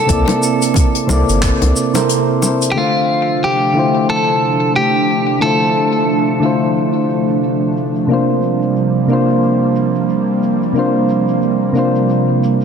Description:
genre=sunset chillout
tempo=90 BPM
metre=4/4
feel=swing 57% on 16ths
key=D minor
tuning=A4 = 440 Hz
part: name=clean electric guitar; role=melody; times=0.0-7.7 s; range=F4 to A4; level=-16 LUFS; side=equal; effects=ping-pong delay
part: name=soft electric-piano-like synth keys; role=accompaniment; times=0.0-12.6 s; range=C3 to E5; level=-16 LUFS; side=moving between left 3 dB and right 4 dB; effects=chorus, auto-pan, low-pass filter, ping-pong delay
part: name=warm sub bass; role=bass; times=0.1-1.7 s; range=G1 to C2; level=-15 LUFS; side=equal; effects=none
part: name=electronic kick drum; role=drums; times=0.1-1.6 s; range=none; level=-15 LUFS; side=equal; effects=none
part: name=jazz brush drum kit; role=drums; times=0.1-12.6 s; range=handclaps, hi-hat, shaker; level=-21 LUFS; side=left 2 dB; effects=low-pass filter on hats, low-pass filter on perc, low-pass filter on snare, low-pass filter on room
part: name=bongos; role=percussion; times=0.3-2.6 s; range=none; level=-23 LUFS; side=left 4 dB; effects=none
part: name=airy breathy pad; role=sustained chords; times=2.8-12.6 s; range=C3 to D4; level=-17 LUFS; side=right 1 dB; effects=chorus
room=wet lush hall reverb, RT60 1.6 s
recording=dense, heavily limited modern master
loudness=-12 LUFS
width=side -7 dB against mid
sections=0.0-2.8 A section; 2.8-12.6 B section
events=filter sweep on synth keys 2.8-12.6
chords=0.0 C13; 2.8 Dm7; 8.1 C7sus4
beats=| 0.09 0.76 1.43 2.09 | 2.76 3.43 4.09 4.76 | 5.43 6.09 6.76 7.43 | 8.09 8.76 9.43 10.09 | 10.76 11.43 12.09

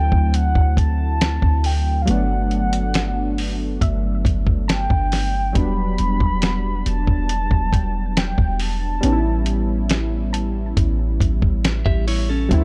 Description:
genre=contemporary R&B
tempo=69 BPM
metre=4/4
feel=straight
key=unclear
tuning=A4 = 440 Hz
part: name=mellow horn-like synth lead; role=melody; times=0.0-9.9 s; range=F5 to B5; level=-29 LUFS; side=equal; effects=chorus, delay
part: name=warm analog keys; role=accompaniment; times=0.0-12.6 s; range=F#3 to E4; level=-27 LUFS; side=equal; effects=chorus
part: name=warm 808-style bass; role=bass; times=0.0-12.6 s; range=E1 to D2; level=-23 LUFS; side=equal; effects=none
part: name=soft round pluck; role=texture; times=0.0-12.1 s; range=D5 to A5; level=-40 LUFS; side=equal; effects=chorus, phaser, delay
part: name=dusty soul sampler-style drum kit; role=drums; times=0.1-12.6 s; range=hi-hat, kick drum, snare drum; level=-22 LUFS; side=equal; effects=vintage 12-bit sampler grit
part: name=clean electric guitar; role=arpeggios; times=11.9-12.6 s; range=C#4 to E5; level=-27 LUFS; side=equal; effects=subtle chorus
room=digital ambience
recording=dark, warm production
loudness=-20 LUFS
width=mono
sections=0.0-12.6 A section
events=none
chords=0.0 D7; 2.1 Gmaj7; 5.6 Em7; 9.0 A7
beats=0.34 1.21 | 2.08 2.94 3.81 4.68 | 5.55 6.42 7.29 8.16 | 9.03 9.90 10.77 11.64 | 12.51

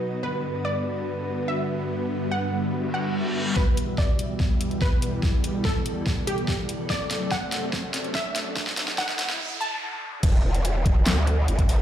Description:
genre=heavy wobble dubstep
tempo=144 BPM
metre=4/4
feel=half-time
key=E minor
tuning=A4 = 440 Hz
part: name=wide unison pluck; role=melody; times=0.0-10.1 s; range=F#4 to A5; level=-32 LUFS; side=equal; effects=tape echo
part: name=supersaw chords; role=sustained chords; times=0.0-9.4 s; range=E2 to D#4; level=-30 LUFS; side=equal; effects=sidechain pumping, low-pass filter
part: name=granular cloud pad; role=texture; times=0.0-11.8 s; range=G3 to G5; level=-32 LUFS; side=left 1 dB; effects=built-in reverb, sidechain pumping
part: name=reverse cymbal, riser and noise sweep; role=sound effects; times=2.9-10.2 s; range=none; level=-35 LUFS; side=right 1 dB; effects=none
part: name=dubstep drum kit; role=drums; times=3.6-11.8 s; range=crash cymbal, handclaps, hi-hat, snare drum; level=-29 LUFS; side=equal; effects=overdrive, high-pass filter on snare, high-pass filter on hats, high-pass filter on cymbals
part: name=electronic kick drum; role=drums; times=3.6-11.7 s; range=none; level=-23 LUFS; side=equal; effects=overdrive
part: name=growl bass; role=bass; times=10.2-11.8 s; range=E1 to D2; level=-22 LUFS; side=equal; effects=chorus, overdrive
room=light reverb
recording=played on a big sound system in a bare room, large studio reverb, high-pass filter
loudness=-23 LUFS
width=side -10 dB against mid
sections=0.0-3.6 A section; 3.6-10.2 B section; 10.2-11.8 C section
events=reverse cymbal 2.9-3.6; build-up 3.6-10.2; drum fill 3.6-9.4; riser 3.6-9.4; filter sweep on supersaw synth 3.6-10.2; filter sweep 3.6-10.2; noise sweep 8.6-10.2; break 9.4-10.2; drop 10.2-11.8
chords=0.2 G; 3.6 Em; 6.9 F#dim; 10.2 Em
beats=| 0.23 0.65 1.06 1.48 | 1.90 2.31 2.73 3.15 | 3.56 3.98 4.40 4.82 | 5.23 5.65 6.07 6.48 | 6.90 7.32 7.73 8.15 | 8.56 8.98 9.40 9.81 | 10.23 10.65 11.06 11.48

